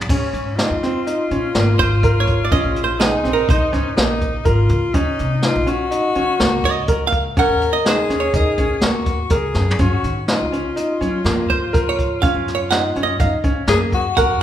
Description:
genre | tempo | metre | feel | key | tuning
progressive instrumental, band music in an uneven meter | 124 BPM | 5/4 | straight | Bb minor | A4 = 440 Hz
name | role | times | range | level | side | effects
upright bass | bass | 0.0-14.4 s | Ab1 to Gb3 | -22 LUFS | equal | none
jazz brush drum kit | drums | 0.0-14.3 s | crash cymbal, hi-hat, kick drum, snare drum, toms | -20 LUFS | equal | none
breathy alto saxophone | second line | 0.1-14.4 s | Db4 to Bb4 | -22 LUFS | left 3 dB | none
clear grand piano | arpeggios | 0.1-14.4 s | Bb3 to Bb4 | -22 LUFS | equal | none
archtop guitar, miked and amplified | accompaniment | 1.8-14.4 s | Ab4 to Gb5 | -20 LUFS | right 6 dB | none
room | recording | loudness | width
wet recital hall reverb, RT60 1.4 s | recorded in a church or concert hall | -15 LUFS | side -11 dB against mid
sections
0.0-14.4 A section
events
hollow-body jazz guitar solo 0.0-14.4; drum fill 9.6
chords
0.1 Bbm11; 4.9 Ebm7; 9.8 Gbmaj7

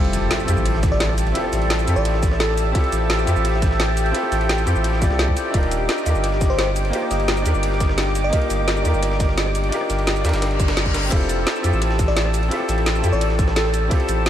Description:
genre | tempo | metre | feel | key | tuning
liquid drum and bass | 172 BPM | 4/4 | straight | F major | A4 = 440 Hz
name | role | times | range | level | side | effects
bright baby grand piano | accompaniment | 0.0-14.3 s | Bb3 to D5 | -25 LUFS | equal | vintage 12-bit sampler grit, tape echo
lush unison pad | sustained chords | 0.0-14.3 s | G4 to E6 | -26 LUFS | left 1 dB | chorus, sidechain pumping
saturated sub bass | bass | 0.0-14.3 s | Eb1 to F2 | -21 LUFS | equal | none
breakbeat sampler-style drum kit | drums | 0.0-14.3 s | ride cymbal, snare drum | -33 LUFS | right 1 dB | high-pass filter on cymbals, high-pass filter on snare
impact and reverse cymbal | sound effects | 0.1-1.4, 10.5-11.1 s | none | -31 LUFS | left 1 dB | none
drum and bass drum kit | drums | 0.1-14.3 s | crash cymbal, hi-hat, rim click, shaker, snare drum | -26 LUFS | equal | none
electronic kick drum | drums | 0.8-14.0 s | none | -20 LUFS | equal | none
bell-like FM electric piano | melody | 0.9-2.9, 6.5-8.7, 12.1-14.1 s | A4 to Eb5 | -28 LUFS | equal | chorus, cassette tape, analog delay
room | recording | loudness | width
moderate cathedral reverb, RT60 6.3 s | dreamy mix soaked in reverb | -17 LUFS | side -10 dB against mid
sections
0.0-14.3 A section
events
impact 0.0-1.4; reverse cymbal 10.5-11.1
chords
0.0 Fmaj9; 5.5 Ebmaj9; 11.1 Fmaj9

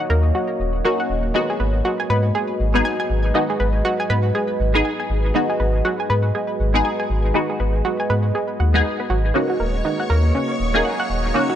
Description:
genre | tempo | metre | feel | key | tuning
deep house | 120 BPM | 4/4 | swing 59% on 16ths | unclear | A4 = 440 Hz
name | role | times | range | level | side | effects
deep dark ambient pad | sustained chords | 0.0-11.6 s | Ab3 to Eb5 | -25 LUFS | right 1 dB | chorus, built-in reverb
analog pluck | arpeggios | 0.0-11.6 s | Db4 to Ab5 | -24 LUFS | right 2 dB | chorus, tape echo
filtered dub chord stab | stabs | 0.0-11.6 s | Ab3 to Ab4 | -22 LUFS | left 1 dB | phaser, ensemble chorus, analog delay
sub bass with octave | bass | 0.1-11.3 s | Eb1 to Ab2 | -20 LUFS | equal | none
string machine, violins | texture | 9.3-11.6 s | Db5 to Db6 | -28 LUFS | left 1 dB | ensemble chorus
room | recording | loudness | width
light reverb | none | -18 LUFS | side -10 dB against mid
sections
0.0-11.6 A section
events
none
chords
0.0 Ebm7; 1.3 Abm7; 9.3 Ebm7

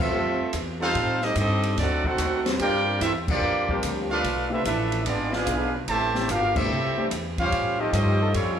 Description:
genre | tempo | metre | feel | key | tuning
jazz, big band swing | 146 BPM | 4/4 | swing 66% on 8ths | unclear | A4 = 445 Hz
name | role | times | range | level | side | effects
clear trumpet section | melody | 0.0-8.6 s | G3 to A5 | -26 LUFS | right 1 dB | none
bright trombone section | second line | 0.0-8.6 s | C3 to G4 | -30 LUFS | right 3 dB | slapback echo
upright bass | bass | 0.0-8.6 s | G1 to A2 | -28 LUFS | equal | none
warm concert grand piano | accompaniment | 0.1-8.6 s | G3 to C5 | -33 LUFS | left 4 dB | none
open jazz drum kit | drums | 0.5-8.5 s | crash cymbal, hi-hat, kick drum, ride cymbal, snare drum | -31 LUFS | equal | none
clear trombone section | sustained chords | 0.8-8.6 s | Eb3 to A4 | -34 LUFS | left 3 dB | none
room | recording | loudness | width
light reverb, studio ambience | live gig heard through the venue's PA, club reverb | -22 LUFS | side -8 dB against mid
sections
0.0-8.6 A section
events
band accent 3.2, 6.5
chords
0.0 Dm11 (rootless); 1.0 Am7b5; 1.8 D7b9; 2.6 Gm7; 4.2 Bm7b5; 5.1 E7b9; 5.9 Am7; 7.5 A7alt

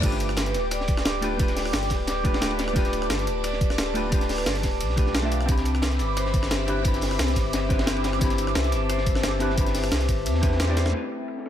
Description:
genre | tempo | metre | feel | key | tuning
liquid drum and bass | 176 BPM | 4/4 | straight | unclear | A4 = 441 Hz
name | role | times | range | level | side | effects
hollow-body jazz guitar | accompaniment | 0.0-11.5 s | A3 to B5 | -31 LUFS | equal | dub echo
airy breathy pad | sustained chords | 0.0-11.5 s | C4 to D6 | -31 LUFS | right 1 dB | chorus, phaser, sidechain pumping
vibraphone with medium mallets | arpeggios | 0.0-11.0 s | G4 to F5 | -31 LUFS | left 4 dB | low-pass filter, dub echo
warm sub bass | bass | 0.0-10.9 s | D1 to E2 | -27 LUFS | equal | none
crunchy breakbeat drum kit | drums | 0.0-11.5 s | hi-hat, ride cymbal, snare drum | -33 LUFS | equal | high-pass filter on cymbals, low-pass filter on cymbals, high-pass filter on hats, low-pass filter on hats, high-pass filter on snare, low-pass filter on snare, high-pass filter on room, low-pass filter on room
electronic kick drum | drums | 0.0-10.5 s | none | -25 LUFS | equal | none
jungle sampler-style drum kit | drums | 0.0-10.9 s | crash cymbal, hi-hat, rim click, snare drum | -30 LUFS | equal | low-pass filter on hats, low-pass filter on snare, low-pass filter on cymbals, low-pass filter on room
room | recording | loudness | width
studio ambience | none | -22 LUFS | side -10 dB against mid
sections
0.0-10.9 A section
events
kick drops out 10.6-10.9; band accent 10.6; drum fill 10.8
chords
0.0 G7; 5.5 Cmaj9; 10.9 Am7

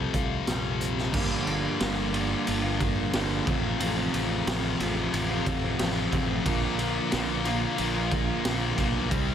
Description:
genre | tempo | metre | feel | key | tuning
quiet-loud alternative rock | 90 BPM | 4/4 | straight | G minor | A4 = 440 Hz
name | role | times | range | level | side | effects
electric guitar through a small old amp | arpeggios | 0.0-9.3 s | G2 to A4 | -31 LUFS | right 5 dB | slapback echo
thick fuzz guitar | riff | 0.0-9.3 s | F2 to C4 | -29 LUFS | left 6 dB | distortion
growling fingered electric bass | bass | 0.0-9.3 s | G1 to C2 | -32 LUFS | right 1 dB | overdrive
raw garage drum kit | drums | 0.1-9.3 s | crash cymbal, hi-hat, kick drum, ride cymbal, snare drum | -30 LUFS | right 1 dB | none
room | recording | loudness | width
light reverb, small room ambience | none | -24 LUFS | side -9 dB against mid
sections
0.0-1.1 A section; 1.1-9.3 B section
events
none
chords
0.0 Fadd9; 1.1 Gm7; 3.5 F/A; 6.5 Bb

